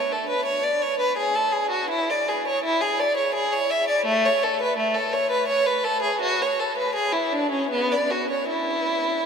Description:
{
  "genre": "classical, baroque-style suite movement for unaccompanied violin",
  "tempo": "82 BPM",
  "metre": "3/4",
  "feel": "uneven beats, rubato",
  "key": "A major",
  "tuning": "A4 = 440 Hz",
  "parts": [
    { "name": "clear violin", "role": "solo", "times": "0.0-9.3 s", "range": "A3 to E5", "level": "-21 LUFS", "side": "equal", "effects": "none" }
  ],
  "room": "wet huge ambient reverb, RT60 8.7 s",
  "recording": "in a vast, echoing space",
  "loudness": "-21 LUFS",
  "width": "side -6 dB against mid",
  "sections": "0.0-9.3 A section",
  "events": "none",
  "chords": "none"
}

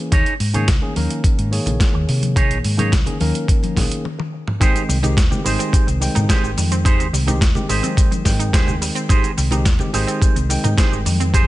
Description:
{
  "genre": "nu-disco, nu disco",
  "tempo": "107 BPM",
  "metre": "4/4",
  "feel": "straight",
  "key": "Ab major",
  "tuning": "A4 = 440 Hz",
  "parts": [
    { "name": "bright tine electric piano", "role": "accompaniment", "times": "0.0-11.5 s", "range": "Eb3 to G5", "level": "-24 LUFS", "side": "equal", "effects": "ping-pong delay" },
    { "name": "electric guitar with an envelope filter", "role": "riff", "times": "0.1-11.5 s", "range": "Eb4 to Db5", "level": "-25 LUFS", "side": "right 4 dB", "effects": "lush chorus, ping-pong delay" },
    { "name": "hollow-body short-scale fingered electric bass", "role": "bass", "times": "0.1-11.5 s", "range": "Ab1 to C3", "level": "-20 LUFS", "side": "equal", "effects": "none" },
    { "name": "dusty soul sampler-style drum kit", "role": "drums", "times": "0.1-11.5 s", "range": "cabasa, hi-hat, snare drum, toms", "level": "-25 LUFS", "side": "equal", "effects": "overdrive, studio reverb" },
    { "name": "electronic kick drum", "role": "drums", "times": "0.1-11.5 s", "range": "none", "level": "-16 LUFS", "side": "equal", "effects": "overdrive, studio reverb" },
    { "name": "congas", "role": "percussion", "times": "0.5-11.2 s", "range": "none", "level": "-27 LUFS", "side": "left 2 dB", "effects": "none" },
    { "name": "wide unison pluck", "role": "arpeggios", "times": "4.6-11.5 s", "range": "G3 to G4", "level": "-30 LUFS", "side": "right 4 dB", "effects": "sidechain pumping, ping-pong delay" }
  ],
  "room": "digital ambience",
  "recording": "nothing above 10.5 kHz",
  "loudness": "-15 LUFS",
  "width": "side -16 dB against mid",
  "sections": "0.0-4.6 A section; 4.6-11.5 B section",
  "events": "break 4.0-4.6; drum fill 4.0-4.6; drop 4.6-11.5",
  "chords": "0.1 Eb7sus4; 4.6 Abmaj7"
}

